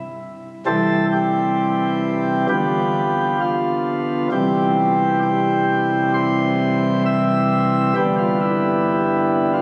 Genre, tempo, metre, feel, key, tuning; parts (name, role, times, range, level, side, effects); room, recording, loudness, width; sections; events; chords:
classical, chorale-style piece for pipe organ; 66 BPM; 4/4; straight; C major; A4 = 440 Hz
chamber organ, principal chorus; solo; 0.7-9.6 s; G1 to E5; -19 LUFS; equal
wet cathedral reverb, RT60 5.5 s; recorded on a phone in the room, club reverb; -19 LUFS; mono
0.7-9.6 A section
0.0 N.C.; 0.7 C; 2.5 Bdim/D; 4.3 C; 8.0 G